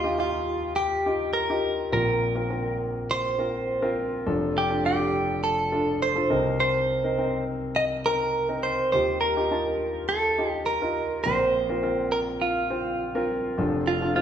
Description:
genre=pop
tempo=103 BPM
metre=4/4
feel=straight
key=Eb lydian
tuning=A4 = 441 Hz
part: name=direct-recorded clean electric guitar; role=melody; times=0.0-14.2 s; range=F4 to Eb5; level=-25 LUFS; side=right 2 dB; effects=phaser
part: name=warm grand piano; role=accompaniment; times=0.0-14.2 s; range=F1 to A5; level=-27 LUFS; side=left 1 dB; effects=none
room=wet large studio reverb, RT60 1.2 s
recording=band playing live in one room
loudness=-23 LUFS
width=side -9 dB against mid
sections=0.0-14.2 A section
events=none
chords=0.0 Ebadd9; 1.9 Bbsus2; 4.3 F6; 6.3 Cm7; 8.9 Ebadd9; 11.3 Bbsus2; 13.6 F6

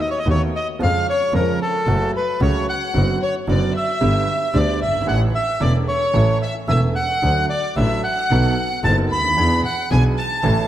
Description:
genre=tango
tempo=112 BPM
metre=4/4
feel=rubato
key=unclear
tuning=A4 = 445 Hz
part: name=bandoneon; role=melody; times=0.0-10.7 s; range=A4 to B5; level=-22 LUFS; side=equal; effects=slapback echo
part: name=warm studio violin section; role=second line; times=0.0-10.7 s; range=A4 to B5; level=-26 LUFS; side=left 2 dB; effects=none
part: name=clear concert grand piano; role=accompaniment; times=0.3-10.7 s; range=E1 to A4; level=-22 LUFS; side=right 2 dB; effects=none
part: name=rich double bass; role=bass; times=0.3-10.7 s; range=E1 to E#2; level=-20 LUFS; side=equal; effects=none
room=moderate concert hall reverb, RT60 2.0 s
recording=none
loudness=-16 LUFS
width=side -12 dB against mid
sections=0.0-10.7 A section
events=none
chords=0.0 B7; 0.8 C#/E#; 1.9 F#m; 2.9 Bm/F#; 4.0 G; 5.1 A; 7.2 D; 8.3 B7; 9.4 E7

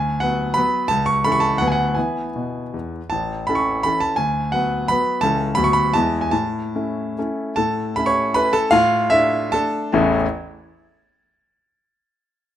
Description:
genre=classical, romantic triple-time dance for piano with dotted rhythms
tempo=136-190 BPM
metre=3/4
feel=rubato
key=A major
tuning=A4 = 440 Hz
part: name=warm concert grand piano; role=solo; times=0.0-10.3 s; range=A1 to C#6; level=-17 LUFS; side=equal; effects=none
room=moderate large studio reverb, RT60 1.1 s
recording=none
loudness=-17 LUFS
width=side -11 dB against mid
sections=0.0-7.6 A section; 7.6-10.0 B section; 10.0-11.1 C section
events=none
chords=0.0 Bm/D; 0.9 A/C#; 1.6 Bm/D; 2.0 E; 3.1 A; 4.2 Bm/D; 5.2 A/C#; 5.6 Bm/D; 5.9 E; 6.3 A; 8.7 Dm/A; 10.0 A

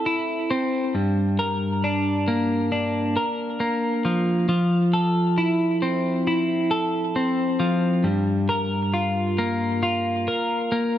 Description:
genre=rock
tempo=68 BPM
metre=4/4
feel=straight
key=G dorian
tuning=A4 = 440 Hz
part: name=twelve-string electric guitar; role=solo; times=0.0-11.0 s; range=G2 to Bb4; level=-20 LUFS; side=equal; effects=tape echo
room=moderate recital hall reverb, RT60 1.6 s, digital ambience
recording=none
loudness=-20 LUFS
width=side -11 dB against mid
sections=0.9-11.0 A section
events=none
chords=0.0 Fmaj7 (rootless); 0.9 Gm7; 4.5 Fmaj7; 8.1 Gm7

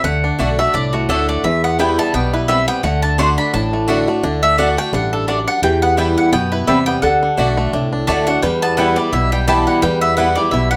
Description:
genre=bluegrass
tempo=172 BPM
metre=4/4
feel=swing 55% on 8ths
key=E minor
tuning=A4 = 440 Hz
part: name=mandolin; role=melody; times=0.0-10.8 s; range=F#4 to C6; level=-21 LUFS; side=equal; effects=none
part: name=picked swing-style acoustic guitar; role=accompaniment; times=0.0-10.8 s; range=E2 to F#4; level=-22 LUFS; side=equal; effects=none
part: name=bluegrass banjo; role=arpeggios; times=0.0-10.8 s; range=D3 to G4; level=-25 LUFS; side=equal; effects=none
part: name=upright bass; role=bass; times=0.0-10.8 s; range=A1 to F#2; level=-24 LUFS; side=equal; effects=none
part: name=mandolin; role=stabs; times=0.4-10.3 s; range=A3 to G5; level=-24 LUFS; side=equal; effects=none
part: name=lap resonator guitar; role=second line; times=5.6-10.8 s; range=G4 to B4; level=-25 LUFS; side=equal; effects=none
room=light reverb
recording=none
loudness=-16 LUFS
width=mono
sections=0.0-10.8 A section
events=none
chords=0.0 D; 1.4 Em; 2.8 D; 5.6 Em; 7.0 D; 8.4 Em

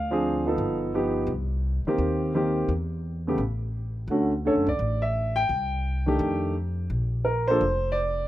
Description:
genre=jazz piano trio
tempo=171 BPM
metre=4/4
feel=swing 64% on 8ths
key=Bb major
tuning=A4 = 442 Hz
part: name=warm baby grand piano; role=melody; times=0.0-8.3 s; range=Db3 to G5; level=-24 LUFS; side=equal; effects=none
part: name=upright bass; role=bass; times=0.0-8.3 s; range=F1 to F#2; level=-28 LUFS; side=equal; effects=none
room=small room ambience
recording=rough home demo mix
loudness=-23 LUFS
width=side -14 dB against mid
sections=0.0-8.3 A section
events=none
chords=0.0 Dm7b5; 0.6 G7b13; 1.3 Cm7; 2.7 N.C.; 4.1 Dmaj7(no3); 5.5 Cm; 6.2 F13; 6.9 Bb

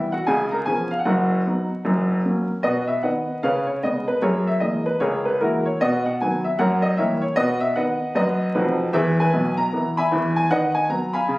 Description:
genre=jazz, stride piano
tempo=152 BPM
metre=4/4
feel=swing 62% on 8ths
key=B major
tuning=A4 = 440 Hz
part: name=clear upright piano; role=solo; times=0.0-11.4 s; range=F#1 to B5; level=-19 LUFS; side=equal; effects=none
room=moderate club reverb, RT60 0.5 s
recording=recorded on a phone in the room, club reverb, vinyl crackle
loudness=-19 LUFS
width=side -19 dB against mid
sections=0.0-2.6 A section; 2.6-11.4 B section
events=none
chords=0.3 C#7; 1.1 B/F#; 1.9 F#; 2.6 B; 3.4 C#5; 4.2 F#9; 5.8 B; 6.6 F#7b9; 7.4 B; 8.9 E; 10.5 B/D#

